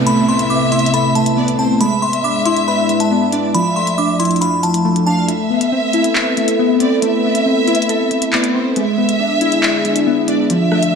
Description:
hip hop, drill; 138 BPM; 4/4; half-time; A harmonic minor; A4 = 442 Hz
glassy synth bell; melody; 0.0-5.3 s; A5 to D6; -19 LUFS; equal; chorus, ping-pong delay
warm studio violin section; second line; 0.0-11.0 s; C5 to F5; -20 LUFS; right 1 dB; ping-pong delay
warbly lo-fi synth keys; accompaniment; 0.0-11.0 s; F3 to B4; -16 LUFS; left 2 dB; chorus
dark analog pad; sustained chords; 0.0-11.0 s; C3 to B5; -20 LUFS; right 1 dB; chorus
downlifter; sound effects; 0.0-1.8 s; -34 LUFS; equal
drill drum kit; drums; 0.1-10.9 s; handclaps, hi-hat, rim click; -21 LUFS; left 1 dB; vintage 12-bit sampler grit
wet plate reverb, RT60 1.9 s, digital ambience; dreamy mix soaked in reverb; -13 LUFS; side -6 dB against mid
0.0-5.3 A section; 5.3-11.0 B section
kick muted 5.3-11.0
0.0 Amadd9; 1.8 E7; 3.5 Dmadd9; 5.3 Amadd9; 8.8 E7

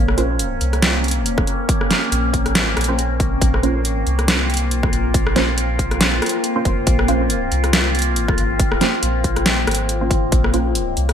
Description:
deep dubstep; 139 BPM; 4/4; swing 56% on 16ths, half-time; Bb minor; A4 = 439 Hz
overtone-sweeping drone; sustained chords; 0.0-11.1 s; Ab3 to F4; -22 LUFS; left 2 dB; chorus, built-in reverb, phaser
soft dub sub bass; bass; 0.0-11.1 s; F1 to C2; -21 LUFS; equal
dubstep drum kit; drums; 0.1-11.1 s; hi-hat, rim click, snare drum; -20 LUFS; equal; overdrive, gated reverb
filtered dub chord stab; stabs; 0.2-10.7 s; Bb3 to C5; -25 LUFS; right 3 dB; phaser, dub echo
electronic kick drum; drums; 1.4-10.4 s; -20 LUFS; equal; overdrive
light reverb, digital ambience; bright 1980s-style digital production; -16 LUFS; side -8 dB against mid
0.0-11.1 A section
0.0 Bbmadd9

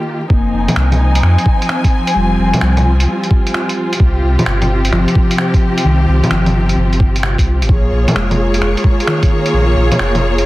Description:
future garage; 130 BPM; 4/4; swing 67% on 16ths; F minor; A4 = 440 Hz
rich symphonic string section; sustained chords; 0.0-10.5 s; C3 to Ab5; -17 LUFS; equal; sidechain pumping
mellow electric guitar; accompaniment; 0.3-9.9 s; Eb3 to Bb3; -20 LUFS; left 1 dB; phaser, sidechain pumping, tape echo
warm sub bass; bass; 0.3-10.4 s; F1 to F2; -14 LUFS; equal; sidechain pumping
electronic kick drum; drums; 0.3-9.3 s; -12 LUFS; equal
lo-fi sampler-style drum kit; drums; 0.7-10.4 s; bongos, finger snaps, hi-hat; -18 LUFS; equal; soft clipping on snare
light reverb; dense, heavily limited modern master, vinyl crackle; -11 LUFS; side -17 dB against mid
0.3-10.5 A section
break 0.0-0.3
0.3 Fm7; 4.0 Csus4; 7.7 Bbm7

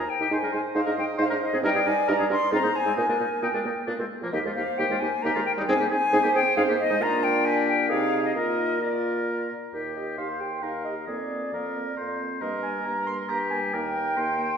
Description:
quick classical-period movement for wind quintet; 135 BPM; 3/4; straight; Eb major; A4 = 443 Hz
silver concert flute; melody; 0.0-14.6 s; Bb4 to C6; -28 LUFS; left 4 dB
warm oboe; second line; 0.0-14.6 s; Bb3 to C5; -30 LUFS; left 2 dB
clear French horn; accompaniment; 0.0-14.5 s; F3 to G4; -32 LUFS; equal
mellow clarinet; accompaniment; 0.0-14.6 s; Ab4 to C6; -31 LUFS; right 5 dB
dark bassoon; bass; 0.2-14.6 s; Eb2 to C3; -30 LUFS; right 2 dB
wet recital hall reverb, RT60 1.6 s; heard from further back in the room; -23 LUFS; side -7 dB against mid
0.0-9.7 A section; 9.7-14.6 B section
0.3 Ab; 1.6 Eb/G; 2.5 Fm/Ab (rootless); 3.0 Eb/Bb (rootless); 3.9 N.C.; 4.3 Eb; 5.7 Ab; 7.0 Bb; 7.9 Ab/C; 8.4 Bb; 9.7 Eb; 11.1 Bb7/F; 12.4 Abmaj7sus2/G; 13.7 Eb

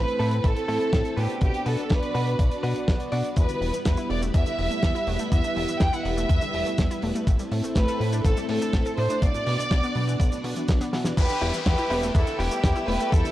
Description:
italo disco; 123 BPM; 4/4; straight; E minor; A4 = 440 Hz
clear studio violin section; melody; 0.0-13.3 s; E4 to G5; -28 LUFS; right 1 dB; tape echo
string machine, full ensemble; sustained chords; 0.0-13.3 s; G3 to F#6; -30 LUFS; equal; ensemble chorus
chorused synth bass; bass; 0.0-13.2 s; E1 to B2; -27 LUFS; equal; tube saturation
damped 70s drum kit; drums; 0.1-13.3 s; cabasa, crash cymbal, hi-hat, snare drum; -32 LUFS; equal
direct-recorded clean electric guitar; stabs; 0.2-3.3, 11.4-13.3 s; G3 to D5; -33 LUFS; left 2 dB
electronic kick drum; drums; 0.4-13.2 s; -23 LUFS; equal; overdrive
analog pluck; arpeggios; 3.4-13.3 s; E2 to A4; -34 LUFS; left 1 dB; chorus, tape echo
downlifter; sound effects; 11.2-13.3 s; -36 LUFS; left 3 dB
light reverb, small room reverb; dry, gritty hardware recording, transformer saturation; -22 LUFS; side -14 dB against mid
0.0-11.2 A section; 11.2-13.3 B section
drum fill 10.8-11.2
0.0 Am; 1.4 Bm; 3.4 Em; 7.3 Am; 9.2 Bm; 11.2 Em

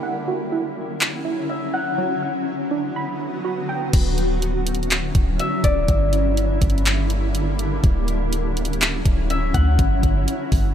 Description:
hip hop, atmospheric cloud-rap; 123 BPM; 4/4; half-time; D major; A4 = 440 Hz
shimmering ambient pad; sustained chords; 0.0-10.7 s; D3 to F#4; -25 LUFS; equal; chorus, built-in reverb, low-pass filter
warbly dusty pluck; arpeggios; 0.0-3.9 s; F#3 to B5; -28 LUFS; right 6 dB; chorus, low-pass filter, tape echo
smooth R&B drum kit; drums; 1.0-10.6 s; crash cymbal, handclaps, hi-hat, kick drum; -20 LUFS; equal
Celtic harp; melody; 1.5-10.7 s; D5 to F#5; -28 LUFS; left 3 dB; low-pass filter, tape echo
soft 808-style bass; bass; 3.9-10.7 s; D1 to D2; -21 LUFS; equal
digital ambience; -19 LUFS; side -9 dB against mid
0.0-3.9 A section; 3.9-10.7 B section
filter sweep 0.0-3.9
0.0 Dmaj9; 2.0 Gmaj7; 3.9 Dmaj9; 5.9 Gm6; 7.8 Dmaj9; 9.8 Gmaj7

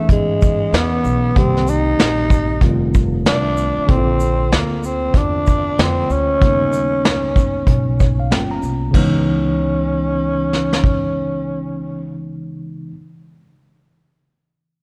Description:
hip hop, jazz-hop; 95 BPM; 4/4; swing 62% on 16ths; A4 = 437 Hz
growling tenor saxophone; melody; 0.0-12.2 s; G#3 to Eb4; -22 LUFS; equal
mellow tine electric piano; accompaniment; 0.0-12.9 s; C#3 to A#5; -24 LUFS; equal
upright bass; bass; 0.1-12.9 s; F1 to G#2; -25 LUFS; equal
vintage brush drum kit; drums; 0.1-11.0 s; crash cymbal, hi-hat, kick drum, shaker, snare drum; -20 LUFS; equal
moderate concert hall reverb, RT60 2.0 s; cassette tape; -17 LUFS; mono
0.0-8.9 A section; 8.9-11.5 B section
tine electric piano fill 7.7-8.9
0.0 C#m9; 1.4 Cm7; 2.6 F9; 3.9 A#maj9; 6.4 D#7b13; 8.9 C#m9

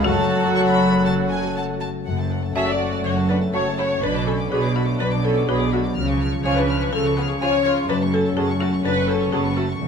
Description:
cinematic, playful, whimsical film cue; 124 BPM; 4/4; straight; F# minor; A4 = 440 Hz
folk marimba with hard mallets; melody; 0.0-9.8 s; F#4 to E5; -29 LUFS; left 5 dB
warm studio violin section; melody; 0.0-9.8 s; F#5 to E#6; -30 LUFS; left 4 dB
large flute ensemble; second line; 0.0-9.4 s; A5 to D6; -31 LUFS; left 2 dB
mellow cor anglais; second line; 0.0-9.5 s; B4 to A5; -32 LUFS; right 4 dB
warm clarinet; second line; 0.0-9.5 s; C#4 to A4; -32 LUFS; right 2 dB
warm studio violin section; second line; 0.0-9.6 s; A3 to G#4; -31 LUFS; left 2 dB
warm bassoon; accompaniment; 0.0-9.5 s; E#3 to F#3; -32 LUFS; right 3 dB
warm studio viola section; accompaniment; 0.0-9.6 s; F#3 to E5; -25 LUFS; equal
warm French horn section; sustained chords; 0.0-9.9 s; E#3 to D4; -27 LUFS; left 2 dB
concert harp; arpeggios; 0.0-9.9 s; E2 to D6; -27 LUFS; left 7 dB
rich studio double bass section; bass; 0.0-9.9 s; E1 to C#2; -27 LUFS; right 5 dB
warm studio cello section; bass; 0.0-9.9 s; E2 to C#3; -26 LUFS; right 2 dB
wet recital hall reverb, RT60 1.5 s; -18 LUFS; side -6 dB against mid
0.0-2.1 A section; 2.1-9.9 A section
0.1 F#m; 4.0 Bm; 6.0 C#; 7.9 F#m

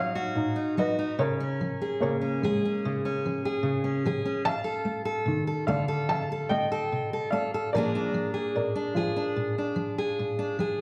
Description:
folk; 73 BPM; 4/4; straight; A4 = 435 Hz
clear upright piano; melody; 0.0-10.6 s; A#4 to A5; -34 LUFS; equal; plate reverb, slapback echo
fingerpicked steel-string acoustic guitar; accompaniment; 0.0-10.8 s; A#2 to A4; -30 LUFS; equal; plate reverb, slapback echo
felt-muted upright piano; arpeggios; 0.0-10.8 s; D3 to F#4; -36 LUFS; equal; plate reverb, slapback echo
moderate club reverb, RT60 0.6 s; live gig heard through the venue's PA, club reverb; -28 LUFS; mono
0.0-10.8 A section
0.0 D#m7; 1.2 A#m7/C#; 4.5 F7; 7.7 A#7

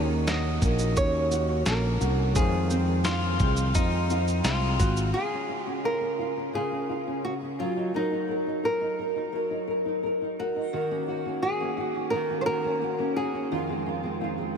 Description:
acoustic pop; 86 BPM; 4/4; straight; Db major; A4 = 440 Hz
direct-recorded clean electric guitar; second line; 0.0-5.1 s; Eb4 to F4; -34 LUFS; left 4 dB; lush chorus
flamenco guitar; accompaniment; 0.0-14.6 s; F2 to Bb4; -30 LUFS; equal; double-tracked left and right
overdriven reed electric piano; accompaniment; 0.0-5.2 s; Ab3 to F5; -38 LUFS; left 6 dB
fingerpicked steel-string acoustic guitar; arpeggios; 0.0-5.7, 10.7-14.6 s; Eb3 to Gb4; -35 LUFS; right 6 dB; analog chorus, analog delay
sustaining fretless electric bass; bass; 0.0-5.1 s; Ab1 to F2; -26 LUFS; equal
nylon-string guitar; melody; 0.3-14.6 s; Eb4 to Eb5; -30 LUFS; equal; analog delay
dusty soul sampler-style drum kit; drums; 0.3-5.1 s; kick drum, shaker, snare drum; -30 LUFS; equal
moderate huge ambient reverb, RT60 6.3 s; dreamy mix soaked in reverb; -24 LUFS; side -6 dB against mid
0.0-5.1 A section; 5.1-14.6 B section
0.0 Ebm7; 2.4 Fm7; 5.1 Db; 7.6 Gb6; 10.7 Ebm7; 13.5 Fm7

